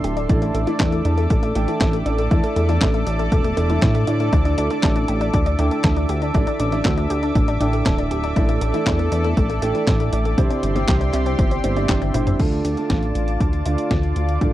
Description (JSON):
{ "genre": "italo disco", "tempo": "119 BPM", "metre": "4/4", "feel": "straight", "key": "D minor", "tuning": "A4 = 440 Hz", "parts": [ { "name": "lush unison pad", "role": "sustained chords", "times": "0.0-14.5 s", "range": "F4 to D6", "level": "-27 LUFS", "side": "equal", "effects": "chorus" }, { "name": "analog pluck", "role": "arpeggios", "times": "0.0-12.4 s", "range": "E3 to A4", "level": "-27 LUFS", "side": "left 3 dB", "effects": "chorus, tape echo" }, { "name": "warm concert grand piano", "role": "stabs", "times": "0.0-14.5 s", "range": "C3 to G5", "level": "-25 LUFS", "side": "right 4 dB", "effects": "low-pass filter, tape echo" }, { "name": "chorused synth bass", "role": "bass", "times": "0.0-14.5 s", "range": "D1 to A2", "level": "-21 LUFS", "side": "equal", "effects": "none" }, { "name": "detuned 8-bit digital drum machine", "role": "drums", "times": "0.0-14.5 s", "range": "crash cymbal, handclaps, hi-hat, snare drum, toms", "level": "-26 LUFS", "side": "equal", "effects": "none" }, { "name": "electronic kick drum", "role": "drums", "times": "0.3-14.5 s", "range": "none", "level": "-20 LUFS", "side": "equal", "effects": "none" } ], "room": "little or no reverb", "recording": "dry, close 1970s-style studio recording", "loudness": "-17 LUFS", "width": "side -14 dB against mid", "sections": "0.0-12.4 A section; 12.4-14.5 B section", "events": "band accent 11.9; drum fill 12.0-12.4; filter sweep on grand piano 12.4-14.5", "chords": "0.3 Asus4; 4.3 Dsus2; 8.4 Asus4; 10.4 Cadd9; 12.4 Dm" }